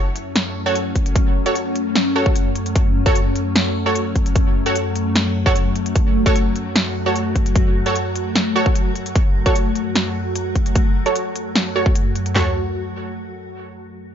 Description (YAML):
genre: heavy wobble dubstep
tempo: 150 BPM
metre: 4/4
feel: half-time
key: F# minor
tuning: A4 = 440 Hz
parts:
  - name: evolving wavetable pad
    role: sustained chords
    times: 0.0-12.5 s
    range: F#2 to F#4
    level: -22 LUFS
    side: left 1 dB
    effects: ensemble chorus, built-in reverb, phaser, sidechain pumping
  - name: big-room dance drum kit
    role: drums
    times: 0.2-12.3 s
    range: hi-hat, snare drum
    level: -21 LUFS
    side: equal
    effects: overdrive
  - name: orchestra-hit-like synth stab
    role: stabs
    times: 0.7-12.5 s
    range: F#4 to C#5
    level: -23 LUFS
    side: right 2 dB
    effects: built-in reverb, cassette tape, dub echo
  - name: big-room dance drum kit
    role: drums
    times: 1.0-12.5 s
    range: handclaps, kick drum, snare drum, toms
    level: -17 LUFS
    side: equal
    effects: overdrive
room: little or no reverb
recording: nothing above 7.5 kHz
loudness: -16 LUFS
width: side -9 dB against mid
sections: 0.0-12.4 A section; 12.4-14.0 B section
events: none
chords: 0.0 F#m